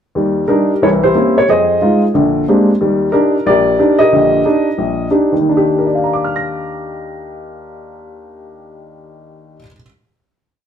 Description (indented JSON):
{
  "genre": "jazz",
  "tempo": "181 BPM",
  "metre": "4/4",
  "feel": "swing 62% on 8ths",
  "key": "Eb major",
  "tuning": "A4 = 440 Hz",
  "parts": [
    { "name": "warm upright piano", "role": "solo", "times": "0.2-9.9 s", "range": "Bb1 to Bb6", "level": "-12 LUFS", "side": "equal", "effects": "none" }
  ],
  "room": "wet studio reverb, RT60 0.8 s",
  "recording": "band playing live in one room",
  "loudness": "-11 LUFS",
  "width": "side -8 dB against mid",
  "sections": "0.1-5.4 A section; 5.4-8.1 final chord",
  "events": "none",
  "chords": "0.1 Ebmaj7; 0.8 C7b9; 1.5 Fm7; 2.1 Bb13; 2.8 Ebmaj7"
}